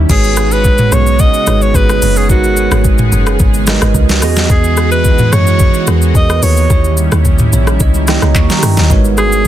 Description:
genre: amapiano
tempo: 109 BPM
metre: 4/4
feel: straight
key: G# minor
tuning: A4 = 439 Hz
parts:
  - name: bell-like tine electric piano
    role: accompaniment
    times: 0.0-9.5 s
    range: D#3 to C#6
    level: -17 LUFS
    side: right 7 dB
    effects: phaser
  - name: lush unison pad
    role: sustained chords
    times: 0.0-9.5 s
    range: C#3 to G#4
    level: -20 LUFS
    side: equal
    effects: chorus
  - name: breathy alto saxophone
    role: melody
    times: 0.1-9.5 s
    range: F#4 to D#5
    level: -16 LUFS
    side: equal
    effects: ping-pong delay
  - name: deep log drum bass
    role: bass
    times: 0.1-9.5 s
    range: F#1 to G2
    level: -13 LUFS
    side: equal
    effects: none
  - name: smooth R&B drum kit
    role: drums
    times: 0.1-9.5 s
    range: crash cymbal, handclaps, hi-hat, kick drum, rim click, shaker, snare drum, toms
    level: -12 LUFS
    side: left 1 dB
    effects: none
room: little or no reverb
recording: dense, heavily limited modern master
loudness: -8 LUFS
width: side -12 dB against mid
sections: 0.1-9.5 A section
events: drop 0.1-9.5; tine electric piano fill 7.3-8.9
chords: 0.1 G#m11; 4.2 Emaj9; 6.7 D#7b9; 8.9 G#m11

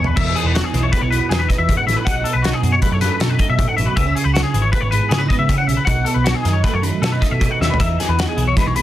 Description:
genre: math rock and midwest emo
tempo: 157 BPM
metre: 5/4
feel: straight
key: unclear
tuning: A4 = 443 Hz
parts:
  - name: twelve-string electric guitar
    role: accompaniment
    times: 0.0-8.8 s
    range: E2 to G#4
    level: -22 LUFS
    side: right 5 dB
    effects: phaser
  - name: twangy electric guitar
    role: arpeggios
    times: 0.0-8.8 s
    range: F#4 to F#5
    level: -21 LUFS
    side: left 5 dB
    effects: ensemble chorus
  - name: hollow-body short-scale picked electric bass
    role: bass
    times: 0.0-8.8 s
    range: E1 to C#3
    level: -20 LUFS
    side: equal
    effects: none
  - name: loose indie drum kit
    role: drums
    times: 0.0-8.8 s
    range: crash cymbal, hi-hat, kick drum, snare drum, toms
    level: -20 LUFS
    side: equal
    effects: none
room: light reverb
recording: dense, heavily limited modern master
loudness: -15 LUFS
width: side -13 dB against mid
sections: 0.2-8.8 A section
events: drum fill 0.0, 7.6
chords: 0.0 Emaj7; 2.1 B7; 4.0 C#m7; 5.9 B7

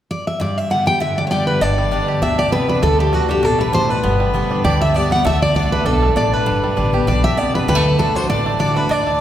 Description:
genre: bluegrass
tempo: 198 BPM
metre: 4/4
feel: swing 55% on 8ths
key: G major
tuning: A4 = 440 Hz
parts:
  - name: picked steel-string acoustic guitar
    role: melody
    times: 0.1-9.2 s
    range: F#4 to G5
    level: -18 LUFS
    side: equal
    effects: none
  - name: picked steel-string acoustic guitar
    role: accompaniment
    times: 0.4-9.2 s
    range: G2 to G4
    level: -21 LUFS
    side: equal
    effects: none
  - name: bright fiddle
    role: second line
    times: 1.3-9.2 s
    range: F#4 to F#5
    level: -26 LUFS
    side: left 3 dB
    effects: none
  - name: bluegrass banjo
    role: arpeggios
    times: 1.6-9.2 s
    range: D3 to G4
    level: -22 LUFS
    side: right 3 dB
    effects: none
  - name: upright bass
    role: bass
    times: 1.6-9.2 s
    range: G1 to D2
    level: -22 LUFS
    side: equal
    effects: none
room: wet church reverb, RT60 3.6 s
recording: recorded in a church or concert hall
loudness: -14 LUFS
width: side -11 dB against mid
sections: 0.4-1.6 A section; 1.6-9.2 B section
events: none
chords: 0.4 G; 2.8 D; 4.0 G; 5.3 D; 6.5 G; 7.7 D

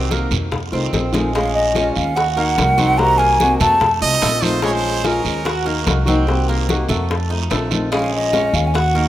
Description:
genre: latin, Cuban son and guajira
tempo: 146 BPM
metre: 4/4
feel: straight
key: Bb minor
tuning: A4 = 440 Hz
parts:
  - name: flamenco guitar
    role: accompaniment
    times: 0.0-9.1 s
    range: C3 to Gb4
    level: -22 LUFS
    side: left 2 dB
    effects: none
  - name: Cuban tres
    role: arpeggios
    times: 0.0-9.1 s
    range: Ab3 to Gb4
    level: -24 LUFS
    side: right 2 dB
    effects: slapback echo
  - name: upright bass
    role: bass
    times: 0.0-9.1 s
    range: Bb1 to F2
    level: -21 LUFS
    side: equal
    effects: none
  - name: bongos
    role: percussion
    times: 0.1-9.0 s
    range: none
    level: -27 LUFS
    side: left 5 dB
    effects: none
  - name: congas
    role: percussion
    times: 0.1-9.1 s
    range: none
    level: -27 LUFS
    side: equal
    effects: none
  - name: guiro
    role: percussion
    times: 0.1-9.1 s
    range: none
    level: -28 LUFS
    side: right 10 dB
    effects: none
  - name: mellow hollow concert flute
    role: melody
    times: 1.3-4.0, 7.9-9.1 s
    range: Eb5 to Bb5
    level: -17 LUFS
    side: equal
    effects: none
  - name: brilliant trumpet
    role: second line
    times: 4.0-5.9 s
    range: Bb4 to Eb5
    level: -22 LUFS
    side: right 4 dB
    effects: none
room: moderate lush hall reverb, RT60 2.7 s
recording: rough home demo mix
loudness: -15 LUFS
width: side -13 dB against mid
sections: 0.0-1.3 A section; 1.3-9.1 B section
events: drum fill 0.9-1.3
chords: 0.0 Cm7b5; 0.5 F7; 1.3 Bbm7; 2.2 Ebm; 3.0 Cm7b5; 3.8 F7; 4.6 Bbm7; 5.5 Ebm; 6.3 Cm7b5; 7.1 F7; 7.9 Bbm7

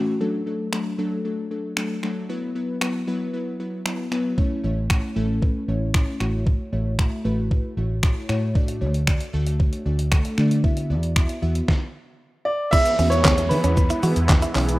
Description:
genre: dance-pop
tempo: 115 BPM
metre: 4/4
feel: straight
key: unclear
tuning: A4 = 440 Hz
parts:
  - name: glassy digital keys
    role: accompaniment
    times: 0.0-14.8 s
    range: A2 to E5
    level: -26 LUFS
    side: left 1 dB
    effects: chorus, sidechain pumping
  - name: downlifter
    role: sound effects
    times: 0.0-0.2, 12.7-14.8 s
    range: none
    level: -33 LUFS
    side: right 2 dB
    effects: none
  - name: detuned 8-bit digital drum machine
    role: drums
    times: 0.7-14.8 s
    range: crash cymbal, finger snaps, handclaps, hi-hat, kick drum, shaker, snare drum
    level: -21 LUFS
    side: equal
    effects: none
  - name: vintage muted fingered electric bass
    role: bass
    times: 4.6-14.8 s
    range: A1 to E3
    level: -23 LUFS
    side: equal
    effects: sidechain pumping
  - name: clear grand piano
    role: melody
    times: 12.5-14.5 s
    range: B4 to E5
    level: -22 LUFS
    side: right 1 dB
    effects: none
  - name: filtered supersaw swell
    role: sustained chords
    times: 12.7-14.8 s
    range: G#2 to E4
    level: -29 LUFS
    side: right 1 dB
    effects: sidechain pumping
  - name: direct-recorded clean electric guitar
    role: riff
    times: 12.7-14.6 s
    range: B3 to F#4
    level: -28 LUFS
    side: right 2 dB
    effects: wide subtle chorus
  - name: group handclap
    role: percussion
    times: 13.2-14.4 s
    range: none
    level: barely audible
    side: none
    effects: none
room: little or no reverb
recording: rough home demo mix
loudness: -20 LUFS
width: side -18 dB against mid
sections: 0.0-12.7 A section; 12.7-14.8 B section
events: stop 11.7-12.7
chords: 0.2 D; 2.3 Esus2; 4.4 A; 6.2 F#m7/A; 8.6 D; 10.6 Esus2; 12.7 E

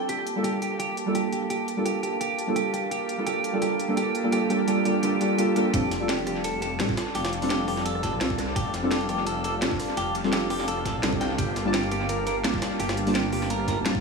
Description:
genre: liquid drum and bass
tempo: 170 BPM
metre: 4/4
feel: swing 54% on 16ths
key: unclear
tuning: A4 = 440 Hz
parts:
  - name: deep mellow chord stab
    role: accompaniment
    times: 0.0-14.0 s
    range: G3 to A5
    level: -27 LUFS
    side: right 1 dB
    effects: chorus, tape echo
  - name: warm analog pad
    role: sustained chords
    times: 0.0-14.0 s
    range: Bb3 to A5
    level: -33 LUFS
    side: equal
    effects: chorus, vintage 12-bit sampler grit
  - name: clean electric guitar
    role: arpeggios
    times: 0.1-13.8 s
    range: G4 to G5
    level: -30 LUFS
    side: right 2 dB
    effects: vintage 12-bit sampler grit, dub echo
  - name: drum and bass drum kit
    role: drums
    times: 0.1-13.9 s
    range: hi-hat, rim click, snare drum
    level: -32 LUFS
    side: right 1 dB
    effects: dub echo
  - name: swelling detuned saw bass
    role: bass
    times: 5.7-14.0 s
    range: D1 to C2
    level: -31 LUFS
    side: equal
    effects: none
  - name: electronic kick drum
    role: drums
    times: 5.7-14.0 s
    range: none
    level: -31 LUFS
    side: right 1 dB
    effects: none
  - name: jungle sampler-style drum kit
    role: drums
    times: 5.7-13.9 s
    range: hi-hat, ride cymbal, snare drum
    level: -35 LUFS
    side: right 1 dB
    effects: high-pass filter on cymbals, high-pass filter on snare, high-pass filter on hats, dub echo
room: wet echo chamber reverb, RT60 1.6 s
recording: echo-heavy mix, studio reverb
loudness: -23 LUFS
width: side -4 dB against mid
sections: 0.0-5.7 A section; 5.7-14.0 B section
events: build-up 0.0-5.7; filter sweep on analog synth pad 0.0-5.7; drop 5.7-14.0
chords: 0.1 Gm9; 5.7 F69; 11.4 Gm9

